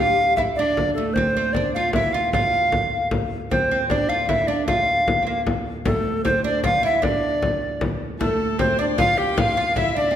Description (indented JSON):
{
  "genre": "medieval dance",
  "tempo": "102 BPM (dotted quarters)",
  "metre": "6/8",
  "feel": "straight",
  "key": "D minor",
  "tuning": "A4 = 441 Hz",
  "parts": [
    { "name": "hollow bass recorder", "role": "melody", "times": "0.0-10.2 s", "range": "G4 to F5", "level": "-21 LUFS", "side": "equal", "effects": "none" },
    { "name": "oud", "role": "second line", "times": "0.0-10.2 s", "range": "A3 to F4", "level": "-26 LUFS", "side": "right 3 dB", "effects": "none" },
    { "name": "pipe organ, flutes", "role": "drone", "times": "0.0-10.2 s", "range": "D2 to A2", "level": "-33 LUFS", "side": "left 1 dB", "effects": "none" },
    { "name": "frame drum", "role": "percussion", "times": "0.2-9.9 s", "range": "none", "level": "-25 LUFS", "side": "left 2 dB", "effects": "none" },
    { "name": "rich fiddle", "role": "second line", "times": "8.2-10.2 s", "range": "A4 to G5", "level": "-28 LUFS", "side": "left 5 dB", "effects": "none" }
  ],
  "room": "wet recital hall reverb, RT60 1.7 s",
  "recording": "none",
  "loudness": "-18 LUFS",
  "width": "side -10 dB against mid",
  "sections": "0.0-8.2 A section; 8.2-10.2 A section",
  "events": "none",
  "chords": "none",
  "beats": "0.57 | 1.16 1.75 | 2.34 2.92 | 3.51 4.10 | 4.68 5.27 | 5.86 6.44 | 7.03 7.62 | 8.20 8.79 | 9.38 9.96"
}